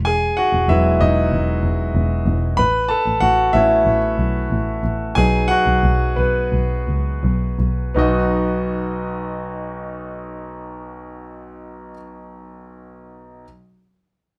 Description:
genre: piano-driven pop.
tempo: 81-95 BPM.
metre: 4/4.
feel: straight.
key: B major.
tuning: A4 = 440 Hz.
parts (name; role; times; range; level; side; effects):
warm double bass; bass; 0.0-11.7 s; E1 to C#2; -22 LUFS; equal; none.
warm concert grand piano; accompaniment; 0.1-13.5 s; B1 to B5; -22 LUFS; equal; none.
room: moderate studio reverb, RT60 0.6 s.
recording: band playing live in one room.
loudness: -18 LUFS.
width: mono.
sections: 0.0-8.0 A section; 8.0-10.9 B section.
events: grand piano solo 0.0-8.0; slowing down 2.6-8.0.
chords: 0.0 Emaj7; 2.6 Aadd9; 5.2 B.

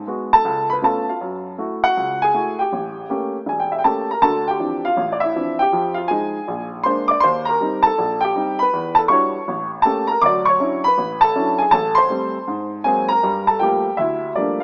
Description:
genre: solo jazz.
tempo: 160 BPM.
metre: 4/4.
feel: swing 66% on 8ths.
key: unclear.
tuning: A4 = 440 Hz.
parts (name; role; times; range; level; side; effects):
warm baby grand piano; solo; 0.0-14.6 s; E1 to D6; -19 LUFS; equal; none.
room: moderate lush hall reverb, RT60 2.5 s.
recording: rough home demo mix, small speaker sound.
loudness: -19 LUFS.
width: mono.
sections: 0.0-4.2 A section; 4.2-14.6 B section.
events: none.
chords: 0.5 C#aug7; 1.2 F#m7; 2.7 A7b9; 4.2 Dm9; 5.7 Fm7; 6.5 Bb7; 7.2 Eb6; 8.7 Em9; 9.5 A7b9; 10.2 Dmaj9; 11.7 Am7; 12.5 G#9; 13.2 Gm9.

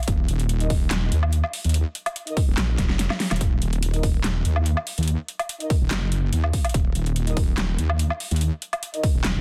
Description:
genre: heavy wobble dubstep.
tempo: 144 BPM.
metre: 4/4.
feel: half-time.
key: Eb minor.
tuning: A4 = 440 Hz.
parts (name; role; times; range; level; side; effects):
dubstep drum kit; drums; 0.0-9.3 s; handclaps, hi-hat, snare drum, woodblock; -30 LUFS; equal; none.
wobble bass; bass; 0.1-9.4 s; Eb1 to Eb2; -24 LUFS; equal; chorus, overdrive.
electronic kick drum; drums; 0.1-9.1 s; none; -24 LUFS; equal; none.
mellow brass ensemble; stabs; 0.6-9.0 s; Eb4 to Eb5; -35 LUFS; equal; delay.
room: little or no reverb.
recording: dense, heavily limited modern master.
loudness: -23 LUFS.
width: mono.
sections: 0.0-9.4 A section.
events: drum fill 2.8-3.4; kick drops out 3.0-3.4.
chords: 0.0 Eb5.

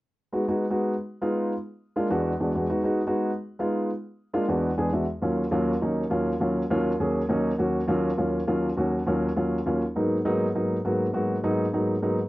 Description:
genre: jazz.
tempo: 203 BPM.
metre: 4/4.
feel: straight.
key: Eb minor.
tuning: A4 = 440 Hz.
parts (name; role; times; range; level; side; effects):
dark baby grand piano; solo; 0.3-12.2 s; Eb2 to G#5; -23 LUFS; equal; cassette tape.
room: moderate studio reverb, RT60 0.6 s.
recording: home recording on cassette, nothing above 7.5 kHz.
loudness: -23 LUFS.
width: side -18 dB against mid.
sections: 0.3-5.1 A section; 5.1-12.3 B section.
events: grand piano fill 4.6-5.1.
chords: 0.3 B6; 0.9 Fm7b5; 1.5 Bb7; 2.1 E7; 2.7 B6; 3.3 Fm7b5; 3.9 Bb7; 4.5 E7; 5.1 Ebm7; 9.8 Abm9.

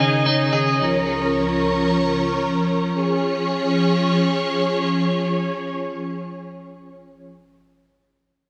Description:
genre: dream pop.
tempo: free time.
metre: none.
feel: none.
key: Db major.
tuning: A4 = 436 Hz.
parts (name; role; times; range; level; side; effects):
ensemble organ-string; sustained chords; 0.0-7.3 s; Db2 to Eb5; -22 LUFS; equal; ensemble chorus.
clean electric guitar; arpeggios; 0.0-1.3 s; Db3 to Ab4; -24 LUFS; equal; lush chorus, digital delay.
room: wet lush hall reverb, RT60 2.0 s, small room ambience.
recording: bright 1980s-style digital production.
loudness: -21 LUFS.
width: mono.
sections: 0.0-2.9 A section; 2.9-7.2 B section.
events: none.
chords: 0.0 Dbsus2; 0.8 Bbm/Db; 2.9 Db.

